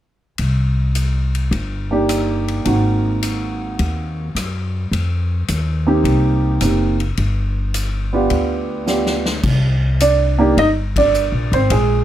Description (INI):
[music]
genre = jazz piano trio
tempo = 106 BPM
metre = 4/4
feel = swing 68% on 8ths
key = C minor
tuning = A4 = 440 Hz
[part]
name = upright bass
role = bass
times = 0.4-12.0 s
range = F#1 to Gb2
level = -18 LUFS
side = left 1 dB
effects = none
[part]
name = swinging big-band drum kit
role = drums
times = 0.4-11.9 s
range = crash cymbal, hi-hat, kick drum, ride cymbal, rim click, snare drum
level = -27 LUFS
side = left 3 dB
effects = none
[part]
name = warm upright piano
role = melody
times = 1.9-12.0 s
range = Ab3 to Eb5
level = -17 LUFS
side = right 2 dB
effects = none
[sound]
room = little or no reverb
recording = close, detailed microphones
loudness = -15 LUFS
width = side -12 dB against mid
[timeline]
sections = 0.4-9.4 A section; 9.4-12.0 B section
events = drum fill 8.9-9.4; band accent 10.9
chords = 0.4 Cm7; 2.7 Ab7; 4.9 F7sus4; 7.2 G7; 9.4 Csus2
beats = | 0.39 0.95 1.52 2.09 | 2.65 3.22 3.79 4.36 | 4.92 5.49 6.05 6.62 | 7.19 7.75 8.32 8.88 | 9.45 10.01 10.58 11.14 | 11.71